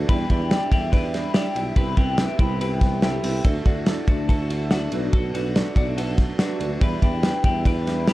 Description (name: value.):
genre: jangly indie pop.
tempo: 143 BPM.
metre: 4/4.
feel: straight.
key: E minor.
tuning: A4 = 441 Hz.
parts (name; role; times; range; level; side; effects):
picked twelve-string acoustic guitar; accompaniment; 0.0-8.1 s; E2 to F#4; -32 LUFS; right 5 dB; none.
warm upright piano; accompaniment; 0.0-8.1 s; C4 to D5; -31 LUFS; right 6 dB; none.
twelve-string electric guitar; arpeggios; 0.0-8.1 s; D4 to B4; -29 LUFS; left 5 dB; phaser.
mellow tuba; bass; 0.0-8.1 s; B1 to E2; -26 LUFS; equal; none.
cloth-damped thuddy drum kit; drums; 0.1-8.1 s; hi-hat, kick drum, ride cymbal, snare drum; -21 LUFS; equal; none.
room: light reverb.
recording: dark, warm production.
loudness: -19 LUFS.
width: side -17 dB against mid.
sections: 0.0-8.1 A section.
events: none.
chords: 0.1 Em7; 1.8 Cmaj7; 3.4 Dadd9; 4.9 Bm7; 6.8 Em7.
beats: | 0.09 0.51 0.93 1.35 | 1.77 2.19 2.61 3.03 | 3.45 3.87 4.29 4.71 | 5.13 5.55 5.97 6.39 | 6.81 7.24 7.66 8.08.